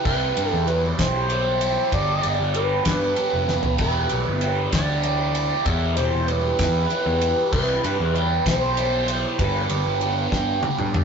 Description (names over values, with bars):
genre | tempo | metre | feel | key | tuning
psychedelic rock | 64 BPM (dotted quarters) | 6/8 | straight | E minor | A4 = 440 Hz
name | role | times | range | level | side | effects
overdriven synth lead | melody | 0.0-10.6 s | B4 to E5 | -25 LUFS | equal | distortion, phaser
overdriven electric guitar | riff | 0.0-11.0 s | E2 to G4 | -25 LUFS | right 4 dB | phaser
fuzz picked electric bass | bass | 0.1-11.0 s | E1 to G2 | -25 LUFS | left 1 dB | overdrive
damped 70s drum kit | drums | 0.1-11.0 s | crash cymbal, kick drum, ride cymbal, snare drum, toms | -26 LUFS | equal | none
room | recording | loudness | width
wet studio reverb, RT60 0.7 s | rough rehearsal-room recording, tube saturation, nothing above 7.7 kHz | -19 LUFS | side -6 dB against mid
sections
0.0-11.0 A section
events
drum fill 3.5-3.8, 10.3-11.0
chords
0.1 Cmaj7; 1.9 G; 3.8 Em7; 7.5 Cmaj7; 9.4 G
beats
| 0.05 0.99 | 1.92 2.86 | 3.79 4.72 | 5.66 6.59 | 7.53 8.46 | 9.39 10.33